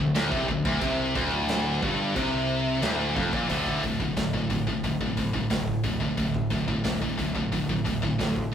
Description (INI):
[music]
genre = heavy metal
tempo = 90 BPM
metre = 4/4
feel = straight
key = unclear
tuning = A4 = 440 Hz
[part]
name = heavy high-gain guitar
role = riff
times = 0.0-8.5 s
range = D2 to D3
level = -27 LUFS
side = left 3 dB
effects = distortion
[part]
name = high-gain distorted guitar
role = riff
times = 0.0-8.5 s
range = D2 to D3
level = -31 LUFS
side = right 5 dB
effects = distortion
[part]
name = fuzz picked electric bass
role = bass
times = 0.0-8.4 s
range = D1 to D2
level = -34 LUFS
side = right 1 dB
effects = overdrive
[part]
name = big rock drum kit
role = drums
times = 0.2-8.5 s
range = china cymbal, hi-hat, kick drum, snare drum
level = -32 LUFS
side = right 1 dB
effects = none
[sound]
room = moderate stone room reverb, RT60 1.3 s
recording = rough rehearsal-room recording, warm saturation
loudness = -24 LUFS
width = side -8 dB against mid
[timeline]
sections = 0.0-3.5 A section; 3.5-8.5 B section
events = none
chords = 0.0 Dm; 3.5 D5